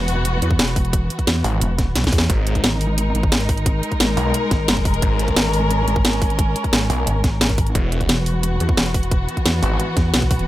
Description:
dark technical drum and bass; 176 BPM; 4/4; straight; G# minor; A4 = 443 Hz
dark chamber string section; sustained chords; 0.0-10.5 s; E3 to A#4; -24 LUFS; left 1 dB; sidechain pumping
pulsing pluck wobble bass; bass; 0.0-10.5 s; E1 to E2; -21 LUFS; equal; chorus
drum and bass drum kit; drums; 0.1-10.5 s; hi-hat, snare drum; -20 LUFS; equal; overdrive
electronic kick drum; drums; 0.5-10.4 s; -20 LUFS; equal; overdrive
snarling distorted saw bass; bass; 1.4-9.8 s; E1 to B1; -21 LUFS; equal; distortion, overdrive
little or no reverb; -16 LUFS; side -15 dB against mid
0.0-2.3 A section; 2.3-10.5 A section
drop 0.0-2.3, 2.3-10.5; drum fill 2.0-2.3
0.0 E; 2.3 G#5; 7.8 E5

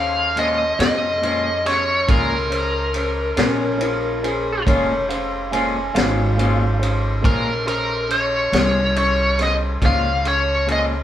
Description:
slow blues; 47 BPM (dotted quarters); 12/8; straight; Bb minor; A4 = 440 Hz
biting lead guitar; melody; 0.0-10.8 s; Bb4 to F5; -20 LUFS; left 1 dB; overdrive
clear grand piano; accompaniment; 0.0-11.0 s; Db4 to C6; -28 LUFS; left 1 dB
upright bass; bass; 0.0-11.0 s; F1 to F2; -24 LUFS; equal
twangy electric guitar; accompaniment; 0.4-10.9 s; Bb2 to F4; -26 LUFS; left 3 dB; harmonic tremolo
vintage drum kit; drums; 0.4-10.9 s; kick drum, ride cymbal, snare drum; -23 LUFS; equal
electric guitar through a small old amp; second line; 3.4-7.0 s; Db4 to Ab5; -25 LUFS; right 1 dB
wet studio reverb, RT60 0.8 s; band playing live in one room; -17 LUFS; side -11 dB against mid
0.0-11.0 A section
0.0 Bbm7

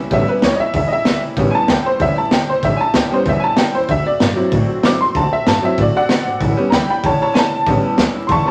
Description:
rockabilly; 191 BPM; 4/4; straight; A mixolydian; A4 = 441 Hz
picked acoustic archtop guitar; accompaniment; 0.0-8.5 s; A2 to F#4; -28 LUFS; equal
upright bass; bass; 0.0-8.5 s; G#1 to A2; -26 LUFS; equal
tack piano; accompaniment; 0.1-8.5 s; F#3 to D6; -19 LUFS; equal
raw garage drum kit; drums; 0.1-8.4 s; hi-hat, kick drum, snare drum; -20 LUFS; equal
wet club reverb, RT60 0.7 s; vinyl crackle; -16 LUFS; mono
0.0-8.5 A section
honky-tonk piano solo 0.0-8.5
0.0 A7; 3.9 D7; 6.4 A7

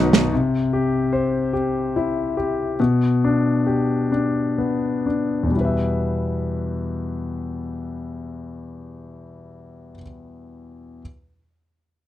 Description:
pop; 40-50 BPM (dotted quarters); 6/8; straight; E minor; A4 = 440 Hz
clear grand piano; accompaniment; 0.0-11.0 s; B1 to E5; -21 LUFS; left 2 dB
light reverb; -19 LUFS; side -12 dB against mid
0.3-5.5 A section; 5.5-8.5 B section
slowing down 0.3-5.5
0.3 C; 2.8 G/B; 5.5 Em

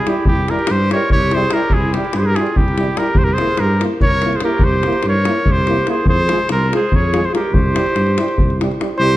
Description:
balkan folk, Balkan brass band; 289 BPM (eighths); 7/8; straight; C phrygian dominant; A4 = 440 Hz
warm trumpet; melody; 0.0-9.2 s; G4 to Db5; -19 LUFS; equal; tape echo
bright clarinet; second line; 0.0-9.2 s; E4 to Bb4; -24 LUFS; right 2 dB
clear trombone; accompaniment; 0.1-9.1 s; G3 to Bb3; -26 LUFS; right 5 dB
warm euphonium; accompaniment; 0.1-9.1 s; E4 to F4; -25 LUFS; left 3 dB
davul; percussion; 0.1-8.9 s; -19 LUFS; left 1 dB
dark tuba; bass; 0.3-9.2 s; C2 to G2; -20 LUFS; equal
moderate recital hall reverb, RT60 1.4 s; dark, warm production; -13 LUFS; side -15 dB against mid
0.0-9.0 A section
0.0 C; 3.2 C7; 6.1 Fm; 7.5 C

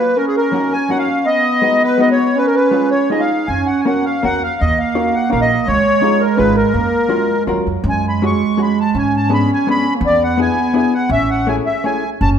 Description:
musette waltz; 164 BPM; 3/4; rubato; F# major, F# minor from 7.8 s; A4 = 443 Hz
accordion; melody; 0.0-12.3 s; G#4 to C#6; -16 LUFS; left 1 dB; light tremolo tuning
warm bass clarinet; second line; 0.0-12.4 s; F#3 to D#4; -18 LUFS; right 3 dB
hollow-body jazz guitar; accompaniment; 0.5-12.0 s; F#2 to A#4; -21 LUFS; left 4 dB
upright bass; bass; 3.5-12.4 s; F#1 to G#2; -20 LUFS; equal
wet recital hall reverb, RT60 1.4 s; minimal, uncompressed stereo recording; -13 LUFS; side -8 dB against mid
0.0-7.8 A section; 7.8-12.4 B section
0.2 D#m7; 1.2 G#m7; 2.4 C#; 3.5 F#; 4.6 D#m7; 5.7 C#add9; 6.7 F#maj7; 7.8 F#sus2; 8.9 G#dim; 10.0 E7; 11.1 Amaj7

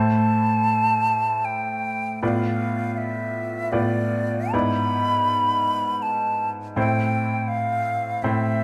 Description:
classical, romantic duo for flute and grand piano; 72-84 BPM; 3/4; rubato; A minor; A4 = 440 Hz
bright concert flute; melody; 0.0-8.6 s; D5 to B5; -26 LUFS; equal
bright grand piano; accompaniment; 0.0-8.6 s; G#2 to D5; -26 LUFS; equal
moderate large studio reverb, RT60 1.5 s; -23 LUFS; mono
0.0-8.6 A section
0.0 Am; 2.2 Bm7b5/A; 4.5 E7/G#; 6.8 Am

